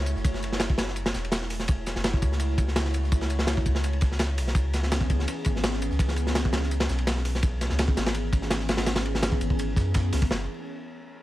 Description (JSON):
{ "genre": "drum and bass, jungle", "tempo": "167 BPM", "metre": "4/4", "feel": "straight", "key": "F# minor", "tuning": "A4 = 440 Hz", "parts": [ { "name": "warbly tape-like pad", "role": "sustained chords", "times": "0.0-10.4 s", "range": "E3 to C#5", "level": "-34 LUFS", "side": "equal", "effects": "chorus, built-in reverb" }, { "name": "soft dub sub bass", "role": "bass", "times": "0.0-10.5 s", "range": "E1 to F#2", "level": "-28 LUFS", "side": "equal", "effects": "none" }, { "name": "breakbeat sampler-style drum kit", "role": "drums", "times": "0.1-10.2 s", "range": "hi-hat, snare drum, tambourine", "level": "-38 LUFS", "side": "right 2 dB", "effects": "high-pass filter on perc, high-pass filter on snare, high-pass filter on hats" }, { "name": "crunchy breakbeat drum kit", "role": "drums", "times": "0.1-10.4 s", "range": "kick drum, ride cymbal, snare drum", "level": "-26 LUFS", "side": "equal", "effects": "none" } ], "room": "studio reverb", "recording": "vinyl crackle", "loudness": "-23 LUFS", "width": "side -16 dB against mid", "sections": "0.0-10.3 A section", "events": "none", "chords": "0.0 F#m7; 4.6 C#m7; 10.3 F#m7" }